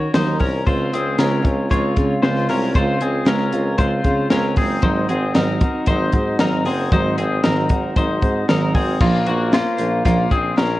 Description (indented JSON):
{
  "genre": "jangly indie pop",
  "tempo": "115 BPM",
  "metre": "4/4",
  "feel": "straight",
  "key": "Db major",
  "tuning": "A4 = 440 Hz",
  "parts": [
    { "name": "picked steel-string acoustic guitar", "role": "accompaniment", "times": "0.0-10.8 s", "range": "Ab2 to C5", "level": "-22 LUFS", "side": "right 3 dB", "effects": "none" },
    { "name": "twelve-string electric guitar", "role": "arpeggios", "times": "0.0-10.8 s", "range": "Bb3 to Db5", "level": "-22 LUFS", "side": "left 3 dB", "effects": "none" },
    { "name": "clear tuba", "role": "bass", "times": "0.0-10.8 s", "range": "Gb1 to Db3", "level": "-22 LUFS", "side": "equal", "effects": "none" },
    { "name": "compact cocktail drum kit", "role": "drums", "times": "0.1-10.7 s", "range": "crash cymbal, hi-hat, kick drum, snare drum", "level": "-20 LUFS", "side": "equal", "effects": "vintage 12-bit sampler grit" }
  ],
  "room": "light reverb, small room ambience",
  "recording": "worn, warbling old tape, cassette tape, warbly pitch drift",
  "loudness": "-16 LUFS",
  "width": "side -16 dB against mid",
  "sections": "0.0-9.0 A section; 9.0-10.8 B section",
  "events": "none",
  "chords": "0.0 Ebm7; 0.7 Dbmaj7; 4.8 Ab7; 9.0 Bbmadd9",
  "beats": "0.14 | 0.66 1.19 1.71 2.23 | 2.75 3.27 3.79 4.31 | 4.83 5.35 5.87 6.39 | 6.92 7.44 7.96 8.48 | 9.00 9.53 10.05 10.57"
}